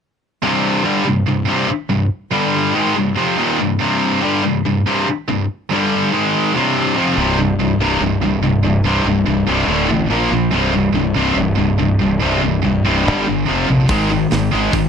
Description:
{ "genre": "heavy metal", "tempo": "143 BPM", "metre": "4/4", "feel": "straight", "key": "C minor", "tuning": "A4 = 442 Hz", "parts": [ { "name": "high-gain distorted guitar", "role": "riff", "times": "0.4-14.9 s", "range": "C2 to Bb3", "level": "-17 LUFS", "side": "left 7 dB", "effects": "distortion" }, { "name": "scooped high-gain guitar", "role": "riff", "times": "0.4-14.9 s", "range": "C2 to Bb3", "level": "-18 LUFS", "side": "right 10 dB", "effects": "distortion" }, { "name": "fuzz fingered electric bass", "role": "bass", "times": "7.2-14.9 s", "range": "C1 to Bb1", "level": "-21 LUFS", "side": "equal", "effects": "overdrive" }, { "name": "tight metal drum kit", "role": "drums", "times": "13.9-14.8 s", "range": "hi-hat, kick drum, snare drum", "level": "-22 LUFS", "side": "right 1 dB", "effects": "none" } ], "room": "small room ambience", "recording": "dry, close 1970s-style studio recording, lossy compression artefacts", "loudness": "-14 LUFS", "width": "side -7 dB against mid", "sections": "0.4-7.2 A section; 7.2-14.9 B section", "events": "none", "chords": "0.4 C5; 2.3 G5; 2.7 Cm; 5.7 G5; 6.1 Ab5; 6.5 C5; 9.7 D5; 10.1 Bb5; 10.5 C5; 13.1 G5; 13.5 F5; 13.9 Ab5" }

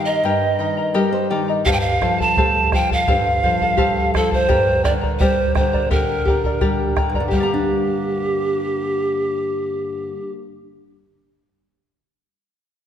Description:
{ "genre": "andean folk, Andean ensemble", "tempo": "85 BPM", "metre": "2/4", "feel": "straight", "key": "G minor", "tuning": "A4 = 440 Hz", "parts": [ { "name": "breathy bright pan flute", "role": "melody", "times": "0.0-10.3 s", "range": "G4 to A5", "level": "-20 LUFS", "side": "right 2 dB", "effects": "none" }, { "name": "charango", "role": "accompaniment", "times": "0.0-10.9 s", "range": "G4 to Bb5", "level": "-23 LUFS", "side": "left 4 dB", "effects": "none" }, { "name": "nylon-string guitar", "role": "accompaniment", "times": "0.0-10.5 s", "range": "G2 to D5", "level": "-23 LUFS", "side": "left 1 dB", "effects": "none" }, { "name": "bombo", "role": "percussion", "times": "1.7-7.7 s", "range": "none", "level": "-21 LUFS", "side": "right 1 dB", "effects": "none" } ], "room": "wet scoring stage reverb, RT60 1.6 s", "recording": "dark, warm production", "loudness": "-16 LUFS", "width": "side -9 dB against mid", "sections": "0.0-7.3 A section; 7.3-10.1 B section", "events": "nylon-string guitar fill 0.6-1.7", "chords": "0.0 Eb/G; 1.7 F/G; 4.5 Gm" }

